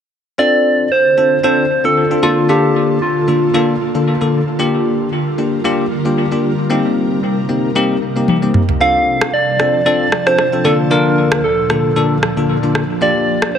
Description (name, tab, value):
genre	afrobeats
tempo	114 BPM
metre	4/4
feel	swing 55% on 16ths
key	unclear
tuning	A4 = 441 Hz
part	soft struck synth lead	melody	0.4-4.1, 8.8-13.6 s	F4 to F5	-15 LUFS	right 1 dB	chorus, dub echo
part	bell-like tine electric piano	accompaniment	0.4-13.5 s	D3 to Bb4	-16 LUFS	left 3 dB	lush chorus, dub echo
part	ethereal airy pad	sustained chords	1.0-13.6 s	D2 to A5	-20 LUFS	right 2 dB	ensemble chorus, built-in reverb, tremolo
part	afro-pop drum kit	drums	8.3-13.5 s	rim click, toms	-18 LUFS	equal	none
room	light reverb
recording	echo-heavy mix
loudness	-12 LUFS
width	side -8 dB against mid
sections	0.4-13.6 A section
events	drum fill 8.3-8.8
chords	0.4 Dm7; 2.2 Bbmaj7/D; 4.6 Gm7; 6.7 Cm7; 8.8 Dm7; 10.6 Bbmaj7/D; 13.0 Gm7